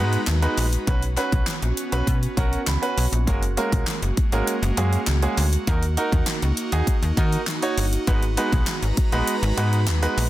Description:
dance-pop; 100 BPM; 4/4; straight; A4 = 440 Hz
bright concert grand piano; accompaniment; 0.0-10.2 s; G#3 to B5; -26 LUFS; right 2 dB; sidechain pumping
airy breathy pad; sustained chords; 0.0-10.3 s; G#3 to A#5; -30 LUFS; right 1 dB; chorus, sidechain pumping
slap-like FM bass; bass; 0.0-10.3 s; F#1 to D#3; -22 LUFS; equal; sidechain pumping
pop drum kit; drums; 0.1-10.3 s; handclaps, hi-hat, kick drum, snare drum; -24 LUFS; equal
group handclap; percussion; 0.3-10.0 s; -37 LUFS; left 10 dB
little or no reverb; dense, heavily limited modern master; -20 LUFS; side -15 dB against mid
0.0-10.3 A section
grand piano fill 2.1-3.3
0.0 G#m7; 0.9 Bsus2; 3.3 F#add9; 5.7 D#m; 8.1 G#m7
0.27 | 0.87 1.47 2.07 2.67 | 3.27 3.87 4.47 5.07 | 5.67 6.27 6.87 7.47 | 8.07 8.67 9.27 9.87

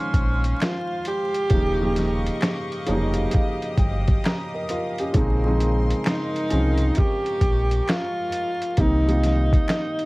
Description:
lo-fi hip hop; 66 BPM; 4/4; swing 66% on 16ths; Bb dorian; A4 = 442 Hz
breathy tenor saxophone; melody; 0.0-10.1 s; Db4 to G4; -25 LUFS; equal; analog delay
felt-muted upright piano; accompaniment; 0.0-10.1 s; Db3 to Bb5; -27 LUFS; equal; cassette tape
warm studio string section; sustained chords; 0.0-8.8 s; Ab3 to Eb6; -34 LUFS; left 1 dB
sub bass with octave; bass; 0.1-9.6 s; Eb1 to C2; -22 LUFS; equal
lo-fi sampler-style drum kit; drums; 0.1-10.1 s; finger snaps, hi-hat, kick drum, snare drum; -22 LUFS; equal; overdrive
finger snaps; percussion; 0.6-10.0 s; -42 LUFS; left 2 dB
light reverb; vinyl crackle; -20 LUFS; side -22 dB against mid
0.0-10.1 A section
felt piano fill 2.4-5.1
0.0 Bbm11; 1.5 Eb9; 5.1 Bbm11; 8.8 Cm7
0.60 | 1.51 2.42 3.33 4.23 | 5.14 6.05 6.96 7.87 | 8.78 9.69

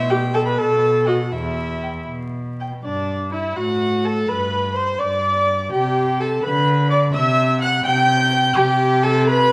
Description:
quick classical-period movement for string quartet; 84 BPM (dotted quarters); 6/8; rubato; G major; A4 = 435 Hz
warm violin; second line; 0.0-9.5 s; D4 to B5; -26 LUFS; equal
rich cello; bass; 0.0-9.5 s; E2 to D3; -24 LUFS; equal
rich viola; accompaniment; 0.1-9.5 s; D4 to G5; -24 LUFS; equal
dark violin; melody; 0.3-9.5 s; D5 to G6; -26 LUFS; equal
wet recital hall reverb, RT60 1.5 s; vinyl crackle; -19 LUFS; mono
0.0-2.8 A section; 2.8-9.5 B section
0.0 Em/B (rootless); 0.6 B7(no3); 1.3 E5; 2.8 G5; 3.6 F#m/A; 4.3 G; 5.7 C5; 6.4 Bm/D; 7.1 C5
0.58 | 1.32 2.08 | 2.84 3.57 | 4.29 5.00 | 5.72 6.44 | 7.14 7.86 | 8.56 9.27

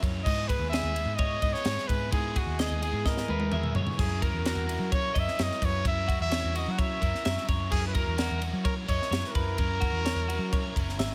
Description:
math rock and midwest emo; 129 BPM; 4/4; straight; A4 = 440 Hz
twelve-string electric guitar; arpeggios; 0.0-11.1 s; F#4 to E5; -39 LUFS; equal; spring reverb
overdriven electric guitar; riff; 0.0-11.1 s; F#3 to A#4; -40 LUFS; equal
vintage muted picked electric bass; bass; 0.0-11.1 s; F#1 to F#3; -34 LUFS; equal
crisp fusion drum kit; drums; 0.0-11.1 s; crash cymbal, kick drum, ride cymbal, snare drum, toms; -32 LUFS; equal
clear trumpet; melody; 0.2-11.0 s; F#4 to F#5; -35 LUFS; equal
little or no reverb; -28 LUFS; mono
0.0-11.1 A section
drum fill 3.1-4.0
0.3 Emaj7; 4.0 F#7
| 0.25 0.72 1.19 1.66 | 2.12 2.59 3.06 3.52 | 3.99 4.46 4.92 5.39 | 5.85 6.32 6.79 7.25 | 7.72 8.18 8.65 9.12 | 9.58 10.05 10.52 10.98

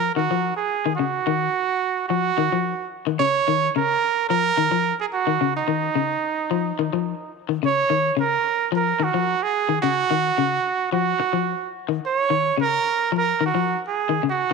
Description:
afrobeat; 109 BPM; 4/4; straight; Eb minor; A4 = 441 Hz
clear trumpet; melody; 0.0-14.5 s; Eb4 to Db5; -21 LUFS; right 7 dB
electric guitar at the edge of break-up; arpeggios; 0.0-14.5 s; Db3 to F3; -24 LUFS; left 16 dB
moderate spring reverb, RT60 2.4 s; 1960s-style stereo with parts hard left and right; -20 LUFS; side -4 dB against mid
0.0-14.5 A section
0.0 Ebm7
0.17 0.72 | 1.27 1.83 2.38 2.93 | 3.48 4.03 4.58 5.13 | 5.68 6.24 6.79 7.34 | 7.89 8.44 8.99 9.54 | 10.09 10.65 11.20 11.75 | 12.30 12.85 13.40 13.95 | 14.51

